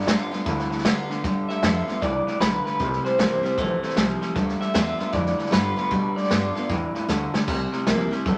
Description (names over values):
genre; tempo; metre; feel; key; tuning
rockabilly; 154 BPM; 4/4; swing 64% on 8ths; G mixolydian; A4 = 439 Hz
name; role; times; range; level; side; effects
electric guitar through a small old amp; melody; 0.0-7.3 s; B4 to E5; -29 LUFS; equal; tremolo
picked steel-string acoustic guitar; accompaniment; 0.0-8.4 s; G2 to F4; -31 LUFS; equal; none
electric guitar through a small old amp; riff; 0.0-8.4 s; G2 to A3; -31 LUFS; equal; none
upright bass; bass; 0.0-8.4 s; G1 to B2; -32 LUFS; equal; none
vintage drum kit; drums; 0.0-8.4 s; hi-hat, kick drum, snare drum, splash cymbal; -28 LUFS; equal; none
room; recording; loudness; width
moderate studio reverb, RT60 1.0 s; none; -24 LUFS; mono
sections
0.0-1.2 A section; 1.2-8.4 B section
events
clean electric guitar solo 1.2-8.4; drum fill 7.1-7.5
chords
0.0 G7; 2.8 C7; 4.4 G7; 7.5 C7